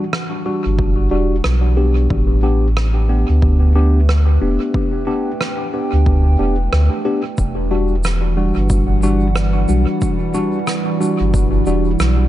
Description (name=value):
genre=ambient dub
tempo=91 BPM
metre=4/4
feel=swing 59% on 16ths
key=E minor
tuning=A4 = 440 Hz
part: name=warbly tape-like pad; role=sustained chords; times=0.0-12.3 s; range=E3 to G5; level=-24 LUFS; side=right 3 dB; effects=chorus, built-in reverb
part: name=tine electric piano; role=stabs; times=0.0-11.9 s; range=G3 to G4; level=-20 LUFS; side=left 2 dB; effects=phaser, dub echo
part: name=rim click and shaker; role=drums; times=0.1-12.2 s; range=none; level=-26 LUFS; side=right 2 dB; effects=dub echo
part: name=soft dub sub bass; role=bass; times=0.7-12.3 s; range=E1 to D2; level=-14 LUFS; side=equal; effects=none
part: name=electronic kick drum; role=drums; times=0.8-11.5 s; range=none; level=-21 LUFS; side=equal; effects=overdrive
room=small room ambience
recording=dark, warm production, nothing above 10.5 kHz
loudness=-14 LUFS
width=side -14 dB against mid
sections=0.0-12.3 A section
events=fade-in on ambient pad 0.0-12.3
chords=0.0 Em9; 2.1 A9sus4; 7.4 Em9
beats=0.13 0.79 1.45 | 2.11 2.77 3.43 4.09 | 4.75 5.40 6.06 6.72 | 7.38 8.04 8.70 9.36 | 10.02 10.68 11.34 12.00